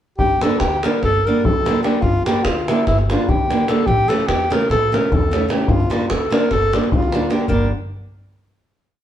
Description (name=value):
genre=balkan folk, Balkan wedding band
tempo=297 BPM (eighths)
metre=9/8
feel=straight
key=G dorian sharp4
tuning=A4 = 439 Hz
part: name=mellow alto saxophone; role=melody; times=0.2-7.7 s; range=E4 to Bb4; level=-20 LUFS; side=equal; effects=none
part: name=upright bass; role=bass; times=0.2-7.7 s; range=G1 to E2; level=-23 LUFS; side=equal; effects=none
part: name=davul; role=percussion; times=0.2-7.7 s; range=none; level=-21 LUFS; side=equal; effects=none
part: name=nylon-string guitar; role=accompaniment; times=0.4-7.7 s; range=C#3 to D4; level=-21 LUFS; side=right 1 dB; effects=none
room=moderate stone room reverb, RT60 0.9 s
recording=band playing live in one room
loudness=-15 LUFS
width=side -10 dB against mid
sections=0.2-7.5 A section; 7.5-9.0 final chord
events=none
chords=0.2 Gm; 3.9 A; 5.7 Gm